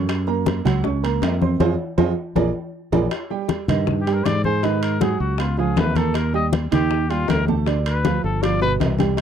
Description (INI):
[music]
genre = Afro-Cuban jazz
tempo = 158 BPM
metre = 4/4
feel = straight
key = unclear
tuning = A4 = 444 Hz
[part]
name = warm upright piano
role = accompaniment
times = 0.0-9.2 s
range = B2 to Db6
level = -23 LUFS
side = right 12 dB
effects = none
[part]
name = fingered electric bass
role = bass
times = 0.0-9.2 s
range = G1 to Ab2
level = -22 LUFS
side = left 1 dB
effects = none
[part]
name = bongos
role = percussion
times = 0.1-9.2 s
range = none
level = -28 LUFS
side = left 19 dB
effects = none
[part]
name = congas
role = percussion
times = 0.1-9.2 s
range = none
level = -24 LUFS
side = left 5 dB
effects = none
[part]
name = timbales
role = percussion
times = 0.1-9.2 s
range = none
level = -29 LUFS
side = right 4 dB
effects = none
[part]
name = warm trumpet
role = melody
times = 4.0-8.7 s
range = F4 to Eb5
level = -25 LUFS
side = left 4 dB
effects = none
[sound]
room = little or no reverb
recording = dry, close 1970s-style studio recording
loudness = -18 LUFS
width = side -8 dB against mid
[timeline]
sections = 0.0-3.1 A section; 3.1-9.2 B section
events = drum fill 1.6-3.1, 8.4-9.2; band accent 1.6-3.1; trumpet solo 3.1-9.2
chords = 0.1 Gbmaj7; 1.6 Fm; 2.4 Bb7; 3.1 Abmaj7(no3)/G; 4.6 Ab5; 5.4 Db9; 6.2 Ebmaj7; 7.7 Dm; 8.4 G7